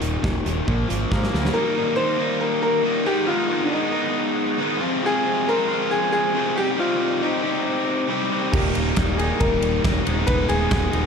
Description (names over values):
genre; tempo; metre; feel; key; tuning
indie rock; 138 BPM; 4/4; straight; Eb major; A4 = 439 Hz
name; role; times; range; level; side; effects
raw garage guitar; riff; 0.0-11.1 s; Eb2 to G4; -22 LUFS; left 1 dB; overdrive
growling picked electric bass; bass; 0.0-1.5, 8.5-11.1 s; Eb1 to Ab2; -25 LUFS; equal; overdrive
big rock drum kit; drums; 0.0-1.5, 8.5-11.0 s; crash cymbal, hi-hat, kick drum, ride cymbal, snare drum; -24 LUFS; equal; none
bright upright piano; melody; 1.5-11.1 s; D4 to C5; -24 LUFS; left 1 dB; slapback echo
room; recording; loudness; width
light reverb; none; -19 LUFS; side -6 dB against mid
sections
0.0-1.5 A section; 1.5-11.1 B section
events
drum fill 1.1-1.5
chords
0.0 Eb5; 0.7 Bb; 1.5 Eb; 3.1 Abm; 4.8 Fm; 6.6 Cm; 8.5 Eb; 10.1 Abm/Eb